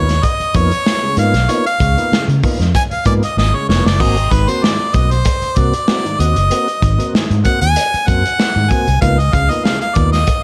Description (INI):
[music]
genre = funk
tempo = 96 BPM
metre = 4/4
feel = straight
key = Ab mixolydian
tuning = A4 = 440 Hz
[part]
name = clear harmonica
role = melody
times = 0.0-10.4 s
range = Cb5 to Ab5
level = -20 LUFS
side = equal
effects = none
[part]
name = tonewheel organ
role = stabs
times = 0.0-10.2 s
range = Ab2 to Gb4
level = -24 LUFS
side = equal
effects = chorus vibrato, slow rotary speaker
[part]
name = vintage muted fingered electric bass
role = bass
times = 0.0-10.2 s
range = F1 to Db3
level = -18 LUFS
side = equal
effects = none
[part]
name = crunchy breakbeat drum kit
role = drums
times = 0.1-10.4 s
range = hi-hat, kick drum, snare drum, splash cymbal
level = -20 LUFS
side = equal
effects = none
[sound]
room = light reverb, small room ambience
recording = none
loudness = -14 LUFS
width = mono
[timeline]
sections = 0.0-10.4 A section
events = harmonica solo 0.0-10.4; drum fill 3.4-4.0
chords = 0.0 Db13; 4.0 Ab9; 9.0 Db13